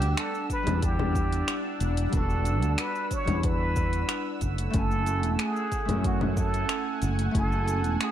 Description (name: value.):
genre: sunset chillout.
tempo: 92 BPM.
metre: 4/4.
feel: straight.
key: unclear.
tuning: A4 = 440 Hz.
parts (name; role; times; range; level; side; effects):
trumpet with plunger mute; melody; 0.0-8.1 s; F#4 to C#5; -32 LUFS; right 1 dB; tape echo.
nylon-string guitar; accompaniment; 0.0-8.1 s; G3 to G#5; -34 LUFS; moving between left 4 dB and right 7 dB; auto-pan, tape echo.
lush unison pad; sustained chords; 0.0-8.1 s; A3 to E6; -34 LUFS; equal; chorus.
fretless electric bass; bass; 0.0-8.0 s; E1 to F#2; -27 LUFS; equal; none.
deep house drum kit; drums; 0.0-8.1 s; congas, finger snaps, hi-hat, shaker; -33 LUFS; left 2 dB; overdrive.
electronic kick drum; drums; 0.5-7.5 s; none; -30 LUFS; equal; none.
room: light reverb, digital ambience.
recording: dark, warm production.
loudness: -24 LUFS.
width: side -11 dB against mid.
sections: 0.0-8.1 A section.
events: none.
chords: 0.0 Em9; 4.4 F#m9.